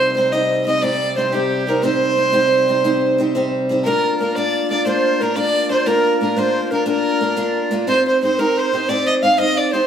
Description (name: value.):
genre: celtic folk, Celtic slide.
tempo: 119 BPM (dotted quarters).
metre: 12/8.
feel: straight.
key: unclear.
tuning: A4 = 440 Hz.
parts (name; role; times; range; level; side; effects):
rich fiddle; melody; 0.0-9.9 s; G4 to F5; -19 LUFS; right 1 dB; none.
bright baroque flute; second line; 0.0-9.9 s; G4 to F5; -22 LUFS; equal; none.
picked steel-string acoustic guitar; accompaniment; 0.0-9.9 s; Bb3 to C5; -19 LUFS; equal; none.
hand-pumped harmonium; drone; 0.0-3.9 s; C3 to G3; -27 LUFS; equal; none.
room: wet stone room reverb, RT60 1.1 s.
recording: band playing live in one room.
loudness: -15 LUFS.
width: side -8 dB against mid.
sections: 0.0-3.9 A section; 3.9-9.9 A section.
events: none.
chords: 0.0 Cm; 3.9 Bb; 7.9 Cm.